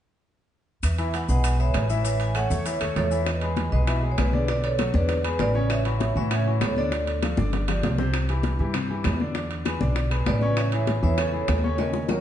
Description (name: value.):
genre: latin, salsa.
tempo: 197 BPM.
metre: 4/4.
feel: straight.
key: E major.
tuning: A4 = 440 Hz.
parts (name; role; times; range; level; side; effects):
vibraphone with medium hard mallets; melody; 0.8-7.9, 10.3-12.2 s; G#4 to G#5; -29 LUFS; right 1 dB; none.
upright bass; bass; 0.8-12.2 s; G1 to A2; -24 LUFS; equal; none.
claves; percussion; 0.8-12.2 s; none; -41 LUFS; left 5 dB; none.
maracas; percussion; 0.8-3.3 s; none; -39 LUFS; left 5 dB; none.
timbales; percussion; 0.8-12.2 s; none; -33 LUFS; right 5 dB; none.
clear concert grand piano; accompaniment; 1.0-12.2 s; C3 to E5; -30 LUFS; left 3 dB; none.
bongos; percussion; 3.3-12.2 s; none; -33 LUFS; left 4 dB; none.
congas; percussion; 3.3-12.2 s; none; -32 LUFS; left 3 dB; none.
room: wet large studio reverb, RT60 1.1 s.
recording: heard from further back in the room, nothing above 10.3 kHz.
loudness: -22 LUFS.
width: side -10 dB against mid.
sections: 0.8-3.3 A section; 3.3-12.2 B section.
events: drum fill 7.4-8.1, 11.8-12.2.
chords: 0.8 Eadd9; 2.0 A; 3.3 Emaj7; 4.5 Bm7; 5.1 E7; 5.7 A6; 6.9 Dm; 7.5 G5; 8.1 Cadd9; 9.4 E7; 10.6 Amaj7.